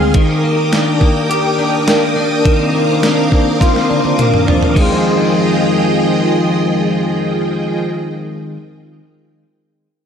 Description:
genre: dream pop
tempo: 104 BPM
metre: 4/4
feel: straight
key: F dorian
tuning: A4 = 438 Hz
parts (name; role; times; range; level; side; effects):
- string machine, full ensemble; sustained chords; 0.0-7.8 s; F3 to F6; -16 LUFS; right 2 dB; ensemble chorus
- electric guitar at the edge of break-up; arpeggios; 0.0-8.6 s; Eb3 to Ab4; -15 LUFS; left 2 dB; ensemble chorus, digital delay
- crisp 8-bit digital drum machine; drums; 0.1-4.9 s; crash cymbal, hi-hat, kick drum, snare drum, toms; -15 LUFS; right 1 dB; overdrive
room: moderate plate reverb, RT60 1.5 s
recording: dark, warm production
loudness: -12 LUFS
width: side -7 dB against mid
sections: 0.0-4.8 A section; 4.8-7.1 B section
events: drum fill 3.6-4.8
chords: 0.1 Ebmaj7; 2.5 Cm11; 4.8 Fm7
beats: | 0.14 0.72 1.30 1.87 | 2.45 3.03 3.60 4.18 | 4.76 5.33 5.91 6.49

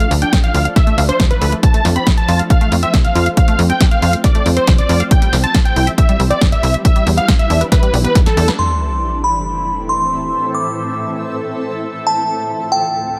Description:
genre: uplifting trance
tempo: 138 BPM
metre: 4/4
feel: straight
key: A minor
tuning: A4 = 439 Hz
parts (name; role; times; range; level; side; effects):
- big supersaw lead; melody; 0.0-8.5 s; A4 to B5; -21 LUFS; equal; sidechain pumping, low-pass filter, digital delay
- shimmering ambient pad; sustained chords; 0.0-13.2 s; D2 to E5; -26 LUFS; equal; chorus, built-in reverb, phaser, sidechain pumping
- tight sequenced synth; arpeggios; 0.0-8.5 s; G3 to F5; -26 LUFS; equal; chorus, phaser, sidechain pumping, digital delay
- punchy analog drum machine; drums; 0.0-8.6 s; hi-hat, snare drum; -23 LUFS; equal; low-pass filter on hats, low-pass filter on cymbals, low-pass filter on snare
- tight sequencer bass; bass; 0.1-8.5 s; G1 to F2; -17 LUFS; equal; sidechain pumping
- electronic kick drum; drums; 0.3-8.2 s; none; -15 LUFS; equal; none
- glassy synth bell; second line; 8.6-13.2 s; G5 to D6; -20 LUFS; equal; chorus, tremolo, dub echo
- sub drop; sound effects; 8.6-10.3 s; none; -25 LUFS; equal; none
room: light reverb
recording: none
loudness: -14 LUFS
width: mono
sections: 0.0-8.6 A section; 8.6-13.2 B section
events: drum fill 8.2-8.6; band accent 8.5; impact 8.6-10.3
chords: 0.0 Dm; 1.6 F; 5.1 C; 6.8 Em7; 8.6 Am; 12.1 Dm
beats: 0.33 0.76 1.20 | 1.63 2.07 2.50 2.94 | 3.37 3.81 4.24 4.67 | 5.11 5.54 5.98 6.41 | 6.85 7.28 7.72 8.15 | 8.59 9.02 9.46 9.89 | 10.33 10.76 11.20 11.63 | 12.07 12.50 12.94

